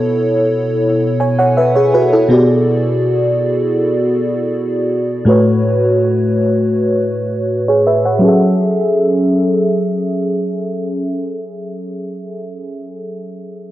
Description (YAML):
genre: R&B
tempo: 81 BPM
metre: 4/4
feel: straight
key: F# minor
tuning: A4 = 440 Hz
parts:
  - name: FM electric piano with soft pad layer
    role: solo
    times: 0.0-13.7 s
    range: A2 to G#5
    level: -13 LUFS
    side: equal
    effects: chorus, cassette tape, analog delay
room: moderate spring reverb, RT60 1.9 s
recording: home recording on cassette, low-pass filter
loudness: -12 LUFS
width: side -14 dB against mid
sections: 0.0-8.2 A section; 8.2-11.2 B section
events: filter sweep 0.0-8.2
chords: 0.0 B9sus4; 2.3 Bm6; 5.3 A69; 8.2 F#m7